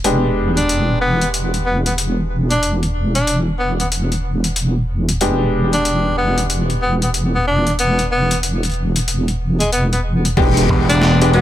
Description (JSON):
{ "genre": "glitch hop", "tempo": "93 BPM", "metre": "4/4", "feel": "swing 62% on 16ths", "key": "unclear", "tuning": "A4 = 440 Hz", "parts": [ { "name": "bright grand piano", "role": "stabs", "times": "0.0-11.4 s", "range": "G#3 to G4", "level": "-21 LUFS", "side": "left 1 dB", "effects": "vintage 12-bit sampler grit, sidechain pumping, tape echo" }, { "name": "wobble bass", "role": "bass", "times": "0.0-10.7 s", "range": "E1", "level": "-18 LUFS", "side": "equal", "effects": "chorus" }, { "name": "boom bap sampler-style drum kit", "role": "drums", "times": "0.0-11.4 s", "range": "crash cymbal, hi-hat, snare drum, tambourine", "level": "-22 LUFS", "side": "left 2 dB", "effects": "overdrive" }, { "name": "clear tenor saxophone", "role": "melody", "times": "0.6-11.4 s", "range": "G#3 to D4", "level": "-20 LUFS", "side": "equal", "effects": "vintage 12-bit sampler grit, tape echo" }, { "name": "electronic kick drum", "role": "drums", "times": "10.4-10.9 s", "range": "none", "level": "-18 LUFS", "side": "equal", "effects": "none" }, { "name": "impact", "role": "sound effects", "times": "10.4-11.4 s", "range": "none", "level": "-23 LUFS", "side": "equal", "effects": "none" }, { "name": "gritty slap bass", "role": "bass", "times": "10.7-11.4 s", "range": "E1", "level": "-14 LUFS", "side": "equal", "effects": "overdrive, tube saturation" } ], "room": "digital ambience", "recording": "none", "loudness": "-14 LUFS", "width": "side -12 dB against mid", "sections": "0.0-10.4 A section; 10.4-11.4 B section", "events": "filter sweep on grand piano 0.0-10.4; drop 10.4-11.4; impact 10.4-11.4", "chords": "0.0 E7#9", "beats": "| 0.05 0.69 1.34 1.98 | 2.63 3.27 3.92 4.56 | 5.21 5.85 6.50 7.14 | 7.79 8.43 9.08 9.72 | 10.37 11.01" }